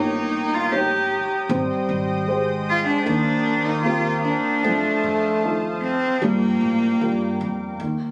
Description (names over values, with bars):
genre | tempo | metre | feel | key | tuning
acoustic folk-pop ballad | 76 BPM | 4/4 | straight | G minor | A4 = 436 Hz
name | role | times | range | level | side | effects
warm cello | melody | 0.0-7.4 s | Bb3 to G4 | -24 LUFS | equal | none
warm French horn | second line | 0.0-7.8 s | F3 to Bb3 | -28 LUFS | equal | none
dark baby grand piano | accompaniment | 0.0-8.1 s | Eb3 to Db5 | -30 LUFS | equal | none
warm analog pad | sustained chords | 0.0-7.8 s | Bb4 to Eb6 | -32 LUFS | equal | chorus, tremolo
upright bass | bass | 0.0-8.1 s | G1 to A2 | -31 LUFS | equal | none
room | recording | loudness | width
light reverb | recorded on a phone in the room, studio ambience | -22 LUFS | mono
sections
0.0-7.8 A section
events
none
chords
0.0 Eb7/G; 1.5 Abmaj7; 3.1 Eb69; 4.6 F7; 6.2 Gm7